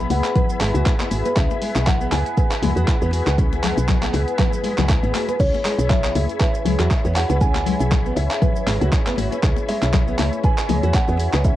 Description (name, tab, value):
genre	afro house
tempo	119 BPM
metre	4/4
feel	swing 56% on 16ths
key	C# minor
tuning	A4 = 445 Hz
part	kalimba	melody	0.0-11.6 s	C#5 to B5	-27 LUFS	right 1 dB	cassette tape, tape echo
part	dark analog pad	sustained chords	0.0-11.6 s	G#4 to B5	-29 LUFS	right 2 dB	chorus, sidechain pumping, cassette tape
part	nylon-string guitar	arpeggios	0.0-11.6 s	G#3 to B4	-29 LUFS	right 2 dB	sidechain pumping, cassette tape, tape echo
part	tonewheel organ	stabs	0.0-11.6 s	B3 to B4	-31 LUFS	left 10 dB	chorus vibrato, fast rotary speaker, sidechain pumping, cassette tape, tape echo
part	woody FM bass	bass	0.0-11.6 s	G#1 to E2	-21 LUFS	equal	sidechain pumping
part	deep house drum kit	drums	0.1-11.6 s	crash cymbal, handclaps, hi-hat, shaker	-27 LUFS	right 1 dB	cassette tape
part	congas	percussion	0.1-11.4 s	none	-27 LUFS	left 10 dB	none
part	electronic kick drum	drums	0.4-11.6 s	none	-19 LUFS	equal	cassette tape
room	little or no reverb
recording	home recording on cassette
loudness	-17 LUFS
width	side -14 dB against mid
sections	0.0-11.6 A section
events	none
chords	0.0 C#m7